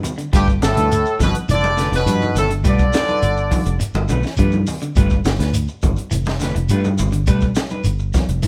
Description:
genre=afrobeat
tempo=104 BPM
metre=4/4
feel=straight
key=G mixolydian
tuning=A4 = 439 Hz
part: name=clean electric guitar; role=stabs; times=0.0-8.3 s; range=A3 to B4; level=-31 LUFS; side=equal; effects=none
part: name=fingered electric bass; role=bass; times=0.0-8.4 s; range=F1 to G2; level=-22 LUFS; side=equal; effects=none
part: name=tight funk drum kit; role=drums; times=0.0-8.5 s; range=hi-hat, kick drum, snare drum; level=-22 LUFS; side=equal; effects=none
part: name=congas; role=percussion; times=0.0-8.5 s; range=none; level=-28 LUFS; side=equal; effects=none
part: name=shekere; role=percussion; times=0.0-8.5 s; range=none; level=-27 LUFS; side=equal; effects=none
part: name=electric guitar at the edge of break-up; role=arpeggios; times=0.2-8.5 s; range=D3 to G3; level=-27 LUFS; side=equal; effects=spring reverb
part: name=muted trombone section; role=second line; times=0.3-3.8 s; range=G2 to D3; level=-28 LUFS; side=equal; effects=none
part: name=bright horn section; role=melody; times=0.4-3.8 s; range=G4 to D5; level=-23 LUFS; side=equal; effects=none
room=light reverb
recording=band playing live in one room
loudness=-18 LUFS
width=mono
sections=0.0-8.5 A section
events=none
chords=0.0 G9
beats=| 0.33 0.91 1.49 2.07 | 2.65 3.23 3.80 4.38 | 4.96 5.54 6.12 6.70 | 7.28 7.85 8.43

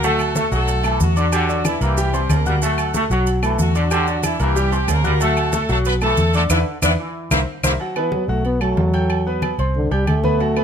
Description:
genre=latin, salsa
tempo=185 BPM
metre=4/4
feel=straight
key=unclear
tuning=A4 = 442 Hz
part: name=clear horn section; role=melody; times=0.0-7.7 s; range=E3 to B4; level=-23 LUFS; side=equal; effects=none
part: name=bright trombone section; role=second line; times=0.0-7.7 s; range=D3 to A3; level=-25 LUFS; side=right 1 dB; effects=none
part: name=clear concert grand piano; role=accompaniment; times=0.0-10.6 s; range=F#3 to G6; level=-23 LUFS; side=left 1 dB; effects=none
part: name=vintage muted fingered electric bass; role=bass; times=0.0-10.6 s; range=B1 to E2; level=-20 LUFS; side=equal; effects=none
part: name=agogo bells and timbales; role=percussion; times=0.0-10.6 s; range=none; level=-29 LUFS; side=right 10 dB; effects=none
part: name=congas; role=percussion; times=0.0-10.6 s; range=none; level=-27 LUFS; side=left 2 dB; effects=none
part: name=maracas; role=percussion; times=0.0-7.7 s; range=none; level=-31 LUFS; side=right 7 dB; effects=none
part: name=claves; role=percussion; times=0.2-10.6 s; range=none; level=-31 LUFS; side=left 6 dB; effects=none
part: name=dark trombone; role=melody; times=8.0-10.6 s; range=D3 to B3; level=-21 LUFS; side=equal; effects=none
room=light reverb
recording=close, detailed microphones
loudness=-16 LUFS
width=side -8 dB against mid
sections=0.0-7.8 A section; 7.8-10.6 B section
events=band accent 6.5-7.8; drum fill 7.2-7.8; trombone solo 7.8-10.6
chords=0.0 D6; 0.7 Bm7; 1.3 C7; 2.6 D6; 3.3 Bm7; 3.9 C7; 5.2 D6; 5.9 Bm7; 6.5 E5; 7.2 C7; 7.8 B7sus4; 8.4 B5; 9.1 Em; 9.8 C5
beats=| 0.04 0.36 0.68 1.01 | 1.33 1.65 1.98 2.30 | 2.62 2.94 3.27 3.59 | 3.92 4.24 4.56 4.88 | 5.21 5.53 5.86 6.18 | 6.50 6.83 7.15 7.48 | 7.80 8.12 8.45 8.78 | 9.10 9.43 9.75 10.07 | 10.40

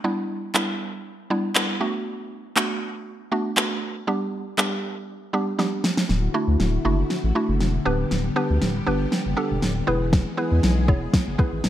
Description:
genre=dance-pop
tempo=119 BPM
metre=4/4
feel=straight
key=D major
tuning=A4 = 440 Hz
part: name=mallet-like synth pluck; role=accompaniment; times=0.0-11.7 s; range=G3 to C#5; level=-26 LUFS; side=right 2 dB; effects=chorus, sidechain pumping
part: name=smooth R&B drum kit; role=drums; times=0.5-11.7 s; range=handclaps, kick drum, snare drum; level=-23 LUFS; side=equal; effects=overdrive, gated reverb
part: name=string machine, violas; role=sustained chords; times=6.1-11.7 s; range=D3 to G#4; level=-29 LUFS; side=left 2 dB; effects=ensemble chorus, sidechain pumping
part: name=saturated sub bass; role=bass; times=6.1-11.7 s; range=D1 to E2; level=-23 LUFS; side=equal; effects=sidechain pumping
room=light reverb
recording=bright 1980s-style digital production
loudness=-21 LUFS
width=side -12 dB against mid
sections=0.0-6.1 A section; 6.1-11.7 B section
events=drum fill 5.6-6.1, 6.1-11.7; build-up 6.1-11.7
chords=0.0 Em7; 1.8 Bm7; 4.1 G; 6.1 Dadd9; 7.9 G/D; 9.9 E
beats=| 0.04 0.55 1.05 1.56 | 2.06 2.56 3.07 3.57 | 4.08 4.58 5.09 5.59 | 6.09 6.60 7.10 7.61 | 8.11 8.62 9.12 9.62 | 10.13 10.63 11.14 11.64

